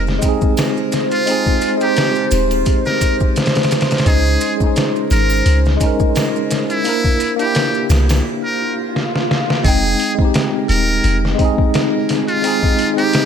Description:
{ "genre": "trip hop", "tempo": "86 BPM", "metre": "4/4", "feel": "swing 55% on 16ths", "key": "F minor", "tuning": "A4 = 441 Hz", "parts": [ { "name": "barky tine electric piano", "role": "accompaniment", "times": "0.0-13.3 s", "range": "Ab3 to G5", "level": "-19 LUFS", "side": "equal", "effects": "medium stereo tremolo, harmonic tremolo, tape echo" }, { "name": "deep dark ambient pad", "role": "sustained chords", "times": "0.0-13.3 s", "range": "Eb4 to C5", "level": "-24 LUFS", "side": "right 1 dB", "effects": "chorus, built-in reverb" }, { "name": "soft 808-style bass", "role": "bass", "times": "0.0-11.4 s", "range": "Eb1 to Db2", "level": "-15 LUFS", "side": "equal", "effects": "none" }, { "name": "trip hop sampler-style drum kit", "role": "drums", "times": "0.1-13.3 s", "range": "hi-hat, kick drum, snare drum", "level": "-18 LUFS", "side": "equal", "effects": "none" }, { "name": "maracas and triangle", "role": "percussion", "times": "0.1-8.2 s", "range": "none", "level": "-33 LUFS", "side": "right 6 dB", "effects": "none" }, { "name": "trumpet with metal mute", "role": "melody", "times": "1.1-13.3 s", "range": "E4 to Bb4", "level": "-22 LUFS", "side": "equal", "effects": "tape echo" }, { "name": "swell", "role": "sound effects", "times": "8.5-9.6 s", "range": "none", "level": "-25 LUFS", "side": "equal", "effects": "none" } ], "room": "light reverb, digital ambience", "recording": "none", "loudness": "-13 LUFS", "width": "side -8 dB against mid", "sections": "0.0-9.6 A section; 9.6-13.3 B section", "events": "break 8.2-9.6; swell 8.5-9.6; drum fill 8.9-9.6", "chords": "0.0 Fm7 (rootless); 4.1 Dbsus2; 6.9 C7; 9.6 Fm7" }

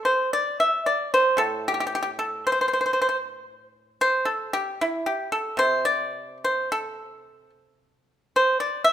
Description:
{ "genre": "chinese traditional, Chinese solo plucked strings", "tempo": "56 BPM", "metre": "2/4", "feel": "rubato", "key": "A yu mode", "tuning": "A4 = 440 Hz", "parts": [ { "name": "pipa", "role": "solo", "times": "0.0-8.9 s", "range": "A2 to E5", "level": "-21 LUFS", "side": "equal", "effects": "none" } ], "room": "moderate recital hall reverb, RT60 1.5 s", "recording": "minimal, uncompressed stereo recording", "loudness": "-21 LUFS", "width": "side -10 dB against mid", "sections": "0.0-8.9 A section", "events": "none", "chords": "none" }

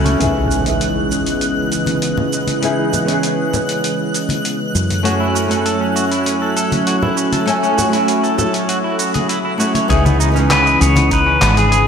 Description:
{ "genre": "sunset chillout", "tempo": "99 BPM", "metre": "4/4", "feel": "straight", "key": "C# minor", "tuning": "A4 = 440 Hz", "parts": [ { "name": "flamenco guitar", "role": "accompaniment", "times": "0.0-11.9 s", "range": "E3 to G#5", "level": "-20 LUFS", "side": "moving between left 3 dB and right 3 dB", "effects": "auto-pan, low-pass filter, ping-pong delay" }, { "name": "lush unison pad", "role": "sustained chords", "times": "0.0-11.9 s", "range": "C#3 to G#5", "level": "-20 LUFS", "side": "right 1 dB", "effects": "chorus" }, { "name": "woody fretless electric bass", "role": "bass", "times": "0.0-11.9 s", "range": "G#1 to F#2", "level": "-18 LUFS", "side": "equal", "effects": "none" }, { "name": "twinkling granular texture", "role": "texture", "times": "0.0-9.9 s", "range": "F#6", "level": "-27 LUFS", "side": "left 1 dB", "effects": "built-in reverb, analog chorus" }, { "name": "semi-hollow electric guitar", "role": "arpeggios", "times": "0.1-0.2, 5.0-11.9 s", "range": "B3 to C#5", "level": "-22 LUFS", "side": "right 2 dB", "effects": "ping-pong delay" }, { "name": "dusty soul sampler-style drum kit", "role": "drums", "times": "0.1-11.8 s", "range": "cabasa, handclaps, hi-hat", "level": "-23 LUFS", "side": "right 1 dB", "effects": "gated reverb" }, { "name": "congas", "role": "percussion", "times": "0.1-11.5 s", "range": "none", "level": "-24 LUFS", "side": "left 2 dB", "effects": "none" }, { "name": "impact", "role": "sound effects", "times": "0.2-2.6 s", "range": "none", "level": "-25 LUFS", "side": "equal", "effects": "none" }, { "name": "electronic kick drum", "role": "drums", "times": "9.9-11.2 s", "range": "none", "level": "-20 LUFS", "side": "equal", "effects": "overdrive" }, { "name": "pedal steel guitar", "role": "melody", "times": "10.5-11.9 s", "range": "G#4 to C#5", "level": "-14 LUFS", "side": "left 2 dB", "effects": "ping-pong delay" } ], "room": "wet lush hall reverb, RT60 1.8 s, digital ambience", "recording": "bright 1980s-style digital production", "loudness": "-14 LUFS", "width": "side -7 dB against mid", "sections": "0.2-9.9 A section; 9.9-11.9 B section", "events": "break 0.0; impact 0.2-2.6; filter sweep on nylon-string guitar 0.2-9.9", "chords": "0.2 C#m9; 4.8 F#m9; 9.9 C#m9" }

